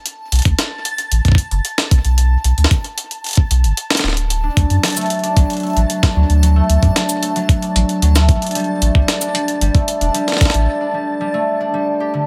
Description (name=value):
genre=IDM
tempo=113 BPM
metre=4/4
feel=straight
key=unclear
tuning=A4 = 440 Hz
part: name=backwards swelling texture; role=texture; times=0.2-10.7 s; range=A5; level=-32 LUFS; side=equal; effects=built-in reverb, sidechain pumping
part: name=jungle sampler-style drum kit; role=drums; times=0.1-10.6 s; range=cabasa, hi-hat, snare drum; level=-22 LUFS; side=equal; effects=none
part: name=warm sub bass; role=bass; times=0.3-10.7 s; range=D1 to F#2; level=-16 LUFS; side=equal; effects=none
part: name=electronic kick drum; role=drums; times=0.5-10.5 s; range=none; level=-15 LUFS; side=equal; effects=none
part: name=concert harp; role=arpeggios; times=4.4-12.3 s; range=D3 to G4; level=-21 LUFS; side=equal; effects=tape echo
room=little or no reverb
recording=none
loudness=-16 LUFS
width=mono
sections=0.0-12.3 A section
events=break 10.7-12.3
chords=0.1 N.C.; 4.3 D; 8.6 A7(no3)